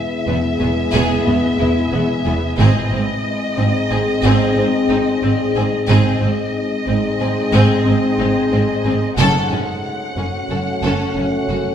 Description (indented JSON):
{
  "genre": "cinematic, hybrid orchestral and electronic film score",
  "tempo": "91 BPM",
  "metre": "5/4",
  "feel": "straight",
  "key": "unclear",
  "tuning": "A4 = 441 Hz",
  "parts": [
    { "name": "warm symphonic violin section", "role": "melody", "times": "0.0-11.7 s", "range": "D#5 to F#5", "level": "-25 LUFS", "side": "left 2 dB", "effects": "none" },
    { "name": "dark French horn section", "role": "sustained chords", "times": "0.0-11.7 s", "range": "G#3 to C#4", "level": "-21 LUFS", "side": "left 3 dB", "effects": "none" },
    { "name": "deep dark ambient pad", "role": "sustained chords", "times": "0.0-11.7 s", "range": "G#3 to C#5", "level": "-24 LUFS", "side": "equal", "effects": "chorus, built-in reverb" },
    { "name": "clear symphonic violin section", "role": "second line", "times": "0.3-11.6 s", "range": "B3 to A4", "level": "-26 LUFS", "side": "left 2 dB", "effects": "none" },
    { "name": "rich symphonic viola section", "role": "accompaniment", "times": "0.3-11.6 s", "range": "B3 to C#4", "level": "-25 LUFS", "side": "equal", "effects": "none" },
    { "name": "clear symphonic double bass section", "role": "bass", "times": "0.3-11.6 s", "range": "E1 to G#1", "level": "-21 LUFS", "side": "right 2 dB", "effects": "none" },
    { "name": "rich symphonic cello section", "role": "bass", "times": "0.3-11.6 s", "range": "E2 to G#2", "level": "-21 LUFS", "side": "right 1 dB", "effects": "none" }
  ],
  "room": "wet recital hall reverb, RT60 1.5 s",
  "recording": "recorded in a church or concert hall",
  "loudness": "-15 LUFS",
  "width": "side -9 dB against mid",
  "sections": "0.0-11.7 A section",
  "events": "none",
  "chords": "0.0 E; 2.6 G#; 9.2 F#m",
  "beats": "0.61 1.27 1.93 | 2.59 3.25 3.91 4.57 5.23 | 5.88 6.54 7.20 7.86 8.52 | 9.18 9.84 10.50 11.16"
}